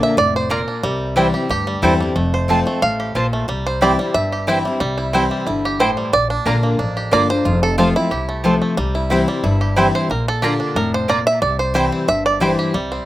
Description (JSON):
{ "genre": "bluegrass", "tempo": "181 BPM", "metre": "4/4", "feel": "swing 53% on 8ths", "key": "C mixolydian", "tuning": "A4 = 437 Hz", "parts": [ { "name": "bluegrass banjo", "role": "melody", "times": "0.0-13.1 s", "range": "G3 to F5", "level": "-20 LUFS", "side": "right 2 dB", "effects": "slapback echo" }, { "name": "picked steel-string acoustic guitar", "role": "accompaniment", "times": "0.0-13.1 s", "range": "F2 to F4", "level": "-20 LUFS", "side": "left 3 dB", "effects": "slapback echo" }, { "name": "upright bass", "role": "bass", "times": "0.2-13.0 s", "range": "F1 to E2", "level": "-23 LUFS", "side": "equal", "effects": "none" }, { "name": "mandolin", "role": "stabs", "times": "0.5-12.5 s", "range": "Bb3 to Bb5", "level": "-20 LUFS", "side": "right 2 dB", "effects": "slapback echo" } ], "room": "little or no reverb", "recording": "recorded outdoors, with no room sound", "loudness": "-15 LUFS", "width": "side -14 dB against mid", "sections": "0.0-2.2 A section; 2.2-12.7 A section", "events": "five-string banjo solo 0.0-12.7", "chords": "0.0 Bb; 0.8 C; 2.2 F; 3.5 C; 6.1 Bb; 7.5 F; 8.8 C; 10.1 Bb; 11.4 C", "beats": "0.18 0.51 | 0.84 1.17 1.50 1.83 | 2.16 2.49 2.82 3.15 | 3.48 3.81 4.14 4.48 | 4.81 5.14 5.47 5.80 | 6.13 6.46 6.79 7.12 | 7.45 7.78 8.11 8.44 | 8.78 9.11 9.44 9.77 | 10.10 10.43 10.76 11.09 | 11.42 11.75 12.08 12.41 | 12.74" }